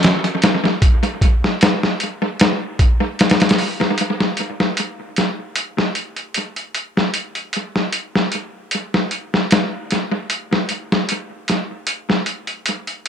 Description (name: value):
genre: trip hop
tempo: 76 BPM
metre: 4/4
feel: swing 54% on 16ths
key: none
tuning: none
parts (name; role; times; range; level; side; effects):
- boom bap sampler-style drum kit; drums; 0.0-13.1 s; hi-hat, kick drum, snare drum; -16 LUFS; equal; vintage 12-bit sampler grit, analog delay
room: light reverb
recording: echo-heavy mix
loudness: -17 LUFS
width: side -8 dB against mid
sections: 0.0-4.0 A section; 4.0-13.1 B section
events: none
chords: none